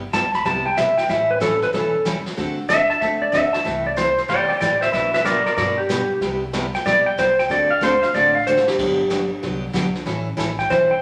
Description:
country, western swing; 187 BPM; 4/4; swing 64% on 8ths; G major; A4 = 440 Hz
picked steel-string acoustic guitar; accompaniment; 0.0-10.9 s; B2 to A4; -28 LUFS; equal
upright bass; bass; 0.0-11.0 s; E1 to G2; -36 LUFS; equal
clean lap steel guitar; second line; 0.1-11.0 s; G4 to B5; -20 LUFS; equal
jazz brush drum kit; drums; 0.1-11.0 s; brushed snare drum, crash cymbal, hi-hat, kick drum, snare drum; -33 LUFS; equal
wet large studio reverb, RT60 0.9 s; -20 LUFS; mono
0.0-11.0 A section
electric slide guitar solo 0.0-11.0; drum fill 8.5-8.8
0.0 Cmaj7; 1.1 A7; 2.4 D7; 3.7 C6; 4.9 Gmaj7/B; 6.2 Cmaj7; 7.5 D7; 8.8 Gmaj7; 10.1 A7
0.13 0.45 0.77 | 1.09 1.41 1.73 2.05 | 2.37 2.69 3.01 3.33 | 3.65 3.98 4.29 4.62 | 4.94 5.26 5.58 5.90 | 6.22 6.54 6.86 7.18 | 7.50 7.82 8.14 8.46 | 8.78 9.10 9.42 9.74 | 10.06 10.39 10.71

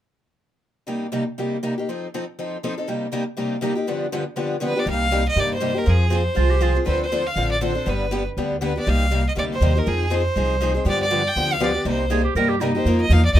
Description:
acoustic string swing (jazz manouche); 240 BPM; 4/4; swing 57% on 8ths; C dorian, C minor from 4.9 s; A4 = 440 Hz
picked steel-string acoustic guitar; accompaniment; 0.9-13.4 s; G2 to Bb4; -25 LUFS; left 3 dB
picked steel-string acoustic guitar; accompaniment; 0.9-13.4 s; G2 to Bb4; -28 LUFS; right 2 dB
bright violin; melody; 4.7-13.4 s; Ab4 to G5; -23 LUFS; right 1 dB
upright bass; bass; 4.9-13.4 s; G1 to G2; -21 LUFS; equal
bright clarinet; second line; 6.4-6.8, 12.1-12.9 s; Eb4 to Bb4; -24 LUFS; right 4 dB
moderate club reverb, RT60 0.6 s; minimal, uncompressed stereo recording; -19 LUFS; side -12 dB against mid
0.9-4.9 A section; 4.9-12.9 B section
0.9 Cm7; 1.9 F7; 2.9 Cm7; 3.9 G7; 4.9 Cm7; 5.9 Fm; 6.9 Dm7; 7.9 G; 8.9 Cm7; 9.9 Fm7; 10.9 G7; 11.9 Cm7; 12.9 F7sus4
| 0.88 1.13 1.38 1.63 | 1.88 2.13 2.38 2.63 | 2.88 3.13 3.38 3.62 | 3.88 4.12 4.37 4.62 | 4.87 5.12 5.37 5.62 | 5.87 6.12 6.37 6.62 | 6.87 7.12 7.37 7.62 | 7.87 8.12 8.37 8.62 | 8.87 9.12 9.37 9.62 | 9.86 10.11 10.36 10.61 | 10.86 11.11 11.36 11.61 | 11.86 12.11 12.36 12.61 | 12.85 13.10 13.35

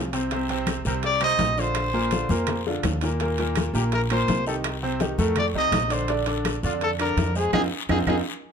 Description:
latin, salsa; 166 BPM; 4/4; straight; Bb major; A4 = 439 Hz
bright upright piano; accompaniment; 0.0-8.2 s; A2 to D5; -27 LUFS; right 1 dB
upright bass; bass; 0.0-8.2 s; Bb1 to F2; -28 LUFS; right 1 dB
bongos; percussion; 0.1-8.2 s; -34 LUFS; left 7 dB
congas; percussion; 0.1-8.2 s; -30 LUFS; left 2 dB
guiro; percussion; 0.1-8.2 s; -37 LUFS; left 8 dB
timbales; percussion; 0.1-8.2 s; -32 LUFS; right 9 dB
claves; percussion; 0.7-8.2 s; -36 LUFS; right 7 dB
warm trumpet; melody; 0.9-8.2 s; F4 to Eb5; -26 LUFS; left 1 dB; plate reverb
light reverb; close, detailed microphones; -21 LUFS; side -7 dB against mid
0.0-8.5 A section
drum fill 2.5-3.2, 8.3; band accent 7.5-8.5
0.3 Cm9; 1.8 Bbadd9; 3.2 Eb5; 4.6 Cm; 5.4 F6; 6.1 Bb; 7.5 Fm7
| 0.31 0.67 1.03 1.39 | 1.75 2.12 2.48 2.84 | 3.20 3.56 3.92 4.28 | 4.64 5.01 5.37 5.73 | 6.09 6.45 6.81 7.17 | 7.53 7.89

